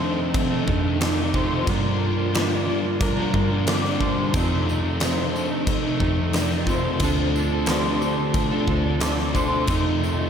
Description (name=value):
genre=rock, shoegaze and dream pop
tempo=90 BPM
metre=4/4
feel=straight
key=F mixolydian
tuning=A4 = 436 Hz
part: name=reedy FM lead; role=melody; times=0.0-10.3 s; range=C4 to G4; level=-30 LUFS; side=right 2 dB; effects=chorus, phaser, analog delay
part: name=electric guitar through a small old amp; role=arpeggios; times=0.0-10.3 s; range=A4 to D5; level=-30 LUFS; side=left 1 dB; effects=ensemble chorus, analog delay
part: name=direct-recorded clean electric guitar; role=riff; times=0.0-10.3 s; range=F2 to A4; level=-28 LUFS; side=right 7 dB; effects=reverse reverb
part: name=overdriven semi-hollow guitar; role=riff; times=0.0-10.3 s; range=F2 to D4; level=-30 LUFS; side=left 1 dB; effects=wide subtle chorus
part: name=thick fuzz guitar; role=riff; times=0.0-10.3 s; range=F2 to D4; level=-28 LUFS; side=left 7 dB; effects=distortion, ensemble chorus
part: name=vintage muted fingered electric bass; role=bass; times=0.0-10.3 s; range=A1 to G2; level=-27 LUFS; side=equal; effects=none
part: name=huge arena drum kit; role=drums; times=0.3-9.8 s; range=crash cymbal, kick drum, snare drum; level=-26 LUFS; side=equal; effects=none
part: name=tambourine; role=percussion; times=4.4-10.2 s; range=none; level=-42 LUFS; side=right 6 dB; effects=none
room=wet lush hall reverb, RT60 2.9 s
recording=dreamy mix soaked in reverb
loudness=-20 LUFS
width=side -7 dB against mid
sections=0.0-10.3 A section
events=none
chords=0.0 F7; 1.7 Gm7; 4.3 F7; 7.0 Dm7; 9.7 F7